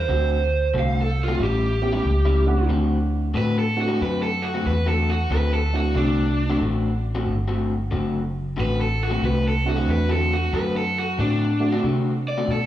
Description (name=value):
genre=blues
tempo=92 BPM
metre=4/4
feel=swing 66% on 8ths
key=D mixolydian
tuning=A4 = 440 Hz
part: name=raw garage guitar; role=melody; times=0.0-12.7 s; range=D4 to F5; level=-25 LUFS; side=equal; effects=overdrive, slapback echo
part: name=vintage muted fingered electric bass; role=bass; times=0.0-12.7 s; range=F#1 to C3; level=-23 LUFS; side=equal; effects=none
part: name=electric guitar through a small old amp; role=riff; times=0.1-12.6 s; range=A2 to F#4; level=-26 LUFS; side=left 3 dB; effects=slapback echo
part: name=overdriven reed electric piano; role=accompaniment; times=1.8-11.8 s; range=A3 to F#5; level=-28 LUFS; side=right 4 dB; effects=spring reverb
room=light reverb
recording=live gig heard through the venue's PA, club reverb, nothing above 10.8 kHz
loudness=-20 LUFS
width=side -12 dB against mid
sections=0.0-2.7 A section; 2.7-12.7 B section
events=overdriven electric guitar solo 2.7-12.7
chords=0.1 D7; 1.4 A7; 2.7 D7